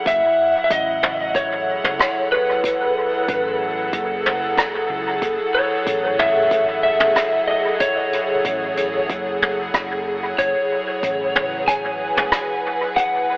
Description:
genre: ambient dub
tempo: 93 BPM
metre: 4/4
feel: straight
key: F# minor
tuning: A4 = 441 Hz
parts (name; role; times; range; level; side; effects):
- airy breathy pad; sustained chords; 0.0-13.4 s; F#3 to F#5; -22 LUFS; equal; chorus
- electric slide guitar; melody; 0.1-13.4 s; B4 to G#5; -20 LUFS; equal; dub echo
- hollow-body short-scale fingered electric bass; bass; 0.1-12.3 s; F#1 to C#2; -36 LUFS; equal; tube saturation
- electronic kick drum; drums; 0.1-13.1 s; none; -28 LUFS; equal; none
- jazz brush drum kit; drums; 0.1-13.1 s; hi-hat, rim click, toms; -22 LUFS; equal; dub echo
room: moderate echo chamber reverb, RT60 2.4 s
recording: vinyl crackle, telephone sound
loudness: -17 LUFS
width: side -25 dB against mid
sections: 0.1-13.4 A section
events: none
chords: 0.1 F#m7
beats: | 0.06 0.70 1.35 2.00 | 2.64 3.29 3.93 4.58 | 5.22 5.87 6.51 7.16 | 7.80 8.45 9.09 9.74 | 10.38 11.03 11.67 12.32 | 12.96

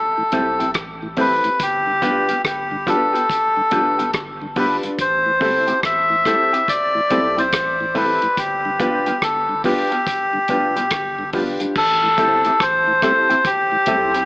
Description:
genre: roots reggae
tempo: 71 BPM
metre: 4/4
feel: swing 63% on 16ths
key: A minor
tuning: A4 = 440 Hz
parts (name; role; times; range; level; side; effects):
- melodica; melody; 0.0-14.3 s; G4 to E5; -17 LUFS; left 1 dB; dub echo
- mellow tonewheel organ; accompaniment; 0.2-14.0 s; G2 to C4; -29 LUFS; equal; slow rotary speaker
- electric guitar with an envelope filter; accompaniment; 0.3-14.2 s; B3 to G4; -28 LUFS; right 1 dB; dub echo
- dark concert grand piano; stabs; 0.3-14.1 s; C4 to B4; -25 LUFS; left 1 dB; none
- soft dub sub bass; bass; 0.3-14.3 s; F1 to B1; -37 LUFS; equal; none
- vintage drum kit; drums; 0.3-14.3 s; crash cymbal, hi-hat, kick drum, rim click; -25 LUFS; equal; none
room: moderate plate reverb, RT60 2.3 s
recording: AM radio sound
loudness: -16 LUFS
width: side -24 dB against mid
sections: 0.0-11.8 A section; 11.8-14.3 B section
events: none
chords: 0.0 Am7; 1.6 G7; 5.0 Am7; 8.4 G7; 11.8 Am7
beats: 0.75 | 1.60 2.44 3.29 4.14 | 4.99 5.83 6.68 7.53 | 8.37 9.22 10.07 10.91 | 11.76 12.60 13.45

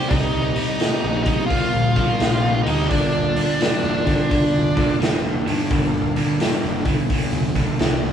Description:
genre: blues rock power trio and southern rock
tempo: 86 BPM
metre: 4/4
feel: swing 65% on 8ths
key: G minor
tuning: A4 = 441 Hz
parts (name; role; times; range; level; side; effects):
- octave-fuzz lead guitar; melody; 0.0-5.0 s; D4 to F4; -23 LUFS; equal; distortion
- biting lead guitar; second line; 0.0-5.0 s; F4 to Bb4; -31 LUFS; right 1 dB; overdrive
- crunchy overdriven guitar; riff; 0.0-8.1 s; G2 to A3; -22 LUFS; equal; none
- fuzz picked electric bass; bass; 0.0-8.1 s; F1 to G2; -25 LUFS; left 1 dB; overdrive
- overdriven tonewheel organ; sustained chords; 0.1-8.1 s; Bb3 to Bb5; -33 LUFS; right 2 dB; slow rotary speaker, chorus vibrato
- raw garage drum kit; drums; 0.1-8.0 s; hi-hat, kick drum, snare drum; -22 LUFS; equal; none
room: wet small room ambience, RT60 0.5 s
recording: band playing live in one room, studio reverb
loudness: -17 LUFS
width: side -8 dB against mid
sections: 0.0-8.1 A section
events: tonewheel organ fill 7.4-8.1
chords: 0.0 Cm7; 2.9 Gm7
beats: | 0.10 0.80 1.50 2.20 | 2.90 3.60 4.30 5.00 | 5.70 6.40 7.10 7.80

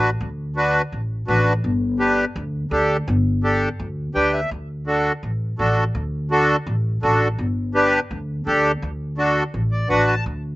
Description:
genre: latin, cumbia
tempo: 167 BPM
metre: 4/4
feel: straight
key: D major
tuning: A4 = 440 Hz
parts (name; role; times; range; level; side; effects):
- accordion; accompaniment; 0.0-10.2 s; D4 to A5; -18 LUFS; equal; none
- upright bass; bass; 0.0-10.6 s; G1 to D2; -23 LUFS; equal; none
room: little or no reverb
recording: recorded outdoors, with no room sound, nothing above 7.7 kHz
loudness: -18 LUFS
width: side -18 dB against mid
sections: 0.0-10.3 A section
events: accordion fill 4.0-4.5, 9.5-10.3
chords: 0.0 D; 1.6 G; 4.5 D; 7.4 G; 8.8 D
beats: | 0.21 0.57 0.93 1.28 | 1.64 2.00 2.36 2.72 | 3.08 3.44 3.80 4.16 | 4.51 4.87 5.23 5.59 | 5.95 6.31 6.67 7.03 | 7.39 7.75 8.11 8.47 | 8.82 9.18 9.54 9.90 | 10.26

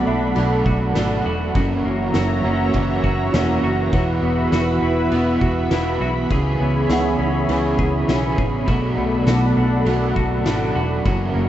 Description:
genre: dream pop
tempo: 101 BPM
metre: 4/4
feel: straight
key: B dorian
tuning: A4 = 440 Hz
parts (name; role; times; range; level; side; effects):
- overdriven semi-hollow guitar; accompaniment; 0.0-11.5 s; F#2 to G#4; -23 LUFS; right 4 dB; tremolo, analog chorus
- lush unison pad; sustained chords; 0.0-11.5 s; F#4 to B5; -24 LUFS; equal; chorus
- clean electric guitar; arpeggios; 0.0-11.5 s; F#2 to G#4; -23 LUFS; left 2 dB; wide subtle chorus, tape echo
- vintage muted fingered electric bass; bass; 0.0-11.5 s; E1 to C#2; -24 LUFS; equal; none
- soft synth bell; texture; 0.0-10.9 s; C#5 to A5; -34 LUFS; right 2 dB; none
- oversized low-tuned drum kit; drums; 0.4-11.2 s; kick drum, ride cymbal, snare drum, tambourine; -25 LUFS; equal; vintage 12-bit sampler grit
room: moderate small room reverb, RT60 0.5 s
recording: rough home demo mix, vinyl crackle, nothing above 7.9 kHz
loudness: -17 LUFS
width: side -12 dB against mid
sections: 0.0-11.5 A section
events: none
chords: 0.0 Bm7; 1.6 F#7; 3.9 Esus2; 6.3 C#m7; 8.7 Bm7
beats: 0.36 0.96 | 1.55 2.15 2.74 3.33 | 3.93 4.52 5.12 5.71 | 6.30 6.90 7.49 8.09 | 8.68 9.28 9.87 10.46 | 11.06

